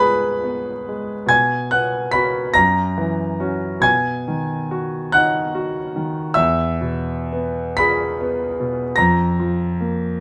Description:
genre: classical, romantic nocturne for solo piano.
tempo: 47 BPM (dotted quarters).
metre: 6/8.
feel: uneven beats, rubato.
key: unclear.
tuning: A4 = 440 Hz.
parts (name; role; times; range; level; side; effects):
clear concert grand piano; solo; 0.0-10.2 s; E2 to B6; -20 LUFS; equal; none.
room: light reverb.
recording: close, detailed microphones.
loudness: -20 LUFS.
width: mono.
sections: 0.0-10.2 A section.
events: none.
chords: 0.0 G#m; 1.3 B5; 2.6 F#7; 3.8 B; 6.4 E; 9.0 A#5/E#.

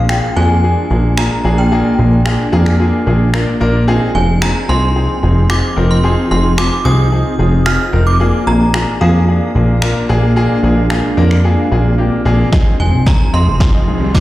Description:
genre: dance-pop.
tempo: 111 BPM.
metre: 4/4.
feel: straight.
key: F dorian.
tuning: A4 = 440 Hz.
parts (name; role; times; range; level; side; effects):
synth chime; melody; 0.0-14.2 s; F5 to F6; -21 LUFS; right 1 dB; ensemble chorus, phaser, digital delay.
clear baby grand piano; accompaniment; 0.0-14.2 s; Bb3 to Bb5; -18 LUFS; left 2 dB; sidechain pumping.
shimmering ambient pad; sustained chords; 0.0-14.2 s; F3 to Ab4; -21 LUFS; right 1 dB; chorus, built-in reverb, sidechain pumping.
plucky analog bass; bass; 0.0-14.2 s; F1 to F2; -13 LUFS; equal; sidechain pumping.
punchy analog drum machine; drums; 0.1-14.2 s; finger snaps, kick drum, snare drum; -16 LUFS; equal; none.
wide unison pluck; arpeggios; 12.5-14.2 s; Eb3 to Eb5; -25 LUFS; right 2 dB; sidechain pumping.
riser; sound effects; 13.3-14.2 s; none; -25 LUFS; equal; none.
room: light reverb, digital ambience.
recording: played on a big sound system in a bare room, stone room reverb.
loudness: -10 LUFS.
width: side -16 dB against mid.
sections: 0.0-12.5 A section; 12.5-14.2 B section.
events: grand piano fill 2.3-3.9; silent gap 12.0-12.5; build-up 12.5-14.2; drum fill 12.5-14.2; riser 13.3-14.2.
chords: 0.0 Bb7; 3.9 Fm7; 8.2 Bb7; 12.5 Fm7.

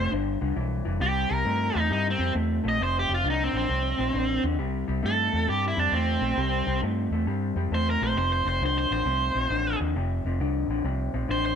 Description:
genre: electric blues shuffle.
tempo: 134 BPM.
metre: 4/4.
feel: swing 66% on 8ths.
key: C mixolydian.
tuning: A4 = 440 Hz.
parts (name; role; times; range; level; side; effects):
smooth overdriven lead guitar; melody; 0.0-11.6 s; C4 to Eb5; -26 LUFS; right 2 dB; slapback echo.
electric guitar through a small old amp; riff; 0.0-11.6 s; F2 to A3; -29 LUFS; left 3 dB; none.
vintage muted fingered electric bass; bass; 0.0-11.5 s; F1 to G2; -28 LUFS; equal; none.
room: light reverb.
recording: none.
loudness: -24 LUFS.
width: side -7 dB against mid.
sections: 0.0-1.0 A section; 1.0-11.6 B section.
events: lead electric guitar solo 1.0-11.6.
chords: 0.1 G7; 1.0 C7; 2.8 F; 4.6 C; 8.2 F.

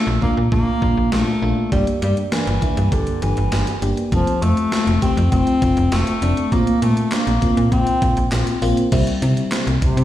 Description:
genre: synth-pop.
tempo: 100 BPM.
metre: 4/4.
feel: straight.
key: unclear.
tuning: A4 = 440 Hz.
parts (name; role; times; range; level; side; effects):
clear bass clarinet; melody; 0.0-10.0 s; C3 to C4; -20 LUFS; left 1 dB; ping-pong delay.
FM electric piano with soft pad layer; accompaniment; 0.0-10.0 s; G3 to Bb4; -23 LUFS; left 1 dB; chorus.
slap-like FM bass; bass; 0.1-10.0 s; F1 to C3; -19 LUFS; equal; none.
gated 80s digital drum machine; drums; 0.2-10.0 s; crash cymbal, handclaps, hi-hat, kick drum, snare drum; -22 LUFS; equal; gated reverb, gated reverb snare.
room: moderate plate reverb, RT60 1.1 s.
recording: played on a big sound system in a bare room, large studio reverb.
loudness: -16 LUFS.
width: side -12 dB against mid.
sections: 0.0-8.9 A section; 8.9-10.0 B section.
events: none.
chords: 0.0 Bb; 1.7 Gm; 4.1 F; 6.5 Bbsus2; 8.9 C.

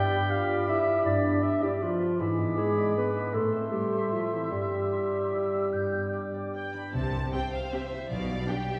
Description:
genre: classical, orchestral ballroom waltz.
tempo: 140-171 BPM.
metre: 3/4.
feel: rubato.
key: C major.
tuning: A4 = 442 Hz.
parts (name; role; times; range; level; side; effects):
clear oboe; second line; 0.0-6.7 s; E5 to B5; -42 LUFS; equal; none.
dark clarinet; second line; 0.0-6.5 s; E4 to G5; -32 LUFS; equal; none.
mellow hollow silver concert flute; second line; 0.0-6.9 s; C6 to G6; -40 LUFS; equal; none.
warm bassoon; accompaniment; 0.0-6.7 s; G3 to A3; -35 LUFS; equal; none.
dark French horn section; sustained chords; 0.0-6.5 s; E3 to G4; -35 LUFS; equal; none.
concert harp; arpeggios; 0.0-8.8 s; G2 to E5; -36 LUFS; equal; none.
rich symphonic violin section; melody; 6.5-8.8 s; E5 to B5; -40 LUFS; equal; none.
rich symphonic cello section; bass; 6.9-8.4 s; B2 to C3; -40 LUFS; equal; none.
rich symphonic double bass section; bass; 6.9-8.4 s; B1 to C2; -37 LUFS; equal; none.
rich symphonic violin section; second line; 7.3-8.8 s; G4 to D5; -39 LUFS; equal; none.
clear symphonic viola section; accompaniment; 7.3-8.6 s; C4 to G4; -40 LUFS; equal; none.
room: wet scoring stage reverb, RT60 1.9 s.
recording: heard from further back in the room.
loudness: -28 LUFS.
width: mono.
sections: 0.0-6.9 A section; 6.9-8.8 B section.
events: none.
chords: 0.0 G; 2.2 E7/G#; 3.3 Am; 4.5 C/G; 5.7 G; 6.9 C; 8.1 G7/B.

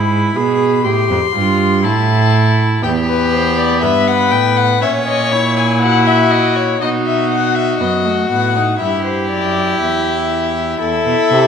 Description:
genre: classical, baroque-style fugue for string quartet.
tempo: 60 BPM.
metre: 4/4.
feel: straight.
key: unclear.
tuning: A4 = 439 Hz.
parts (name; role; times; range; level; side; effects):
dark violin; melody; 0.0-11.5 s; B4 to C6; -18 LUFS; left 9 dB; none.
warm viola; accompaniment; 0.0-11.5 s; A3 to G#4; -18 LUFS; right 1 dB; none.
rich cello; bass; 0.0-11.5 s; E2 to C3; -17 LUFS; right 4 dB; none.
rich violin; second line; 2.8-11.5 s; F#4 to C#5; -18 LUFS; left 3 dB; none.
room: moderate scoring stage reverb, RT60 1.9 s.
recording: minimal, uncompressed stereo recording.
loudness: -12 LUFS.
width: side -7 dB against mid.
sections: 0.0-10.8 A section.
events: none.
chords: 0.0 E/G#; 0.8 Am; 2.8 Em; 4.8 F#7/A#; 6.8 B7; 8.8 Em; 10.8 N.C..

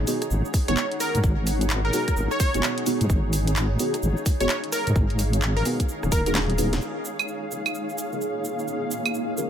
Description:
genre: UK garage, two-step garage.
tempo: 129 BPM.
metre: 4/4.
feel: swing 62% on 16ths.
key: unclear.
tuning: A4 = 440 Hz.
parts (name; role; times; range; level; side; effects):
deep soft wobble bass; bass; 0.0-6.8 s; Eb1 to Ab2; -23 LUFS; equal; chorus.
granular cloud pad; texture; 0.0-9.5 s; Bb3 to Gb5; -30 LUFS; equal; built-in reverb, sidechain pumping.
deep mellow chord stab; stabs; 0.1-9.5 s; Cb4 to Bb4; -28 LUFS; right 2 dB; chorus, phaser, digital delay.
garage drum kit; drums; 0.1-9.5 s; cabasa, claves, handclaps, hi-hat, rim click, snare drum; -29 LUFS; right 1 dB; small room ambience.
electronic kick drum; drums; 0.5-6.2 s; none; -22 LUFS; equal; small room ambience.
plucky unison lead; melody; 0.7-6.3 s; Bb4 to Db5; -29 LUFS; equal; digital delay.
room: light reverb.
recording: none.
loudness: -22 LUFS.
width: side -9 dB against mid.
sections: 0.0-6.8 A section; 6.8-9.5 B section.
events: drum fill 6.4-6.8; band accent 6.7.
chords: 0.0 Abm7; 6.8 Bbm7.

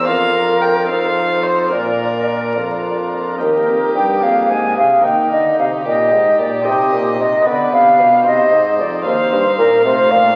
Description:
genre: classical, baroque-style sonata movement with continuo.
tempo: 74 BPM (dotted quarters).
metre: 6/8.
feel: straight.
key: Bb major, Eb major from 3.4 s.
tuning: A4 = 441 Hz.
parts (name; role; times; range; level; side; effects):
warm violin; melody; 0.0-10.4 s; Eb4 to G5; -24 LUFS; equal; none.
concert flute; second line; 0.0-10.4 s; G4 to Ab5; -16 LUFS; equal; none.
pipe organ, cornet; accompaniment; 0.0-10.4 s; Eb2 to Bb4; -24 LUFS; equal; none.
warm bassoon; bass; 0.0-10.4 s; Eb2 to Eb3; -25 LUFS; equal; none.
room: wet recital hall reverb, RT60 1.5 s.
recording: very old 78 rpm record, vinyl crackle.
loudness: -15 LUFS.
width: mono.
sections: 0.0-3.4 A section; 3.4-10.4 A section.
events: none.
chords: 0.1 Bb/F; 0.9 F7; 1.7 Bb; 3.4 Eb; 4.2 Bb7/F; 5.0 Eb; 6.7 Cm; 7.5 G7; 8.3 Cm; 9.9 F7.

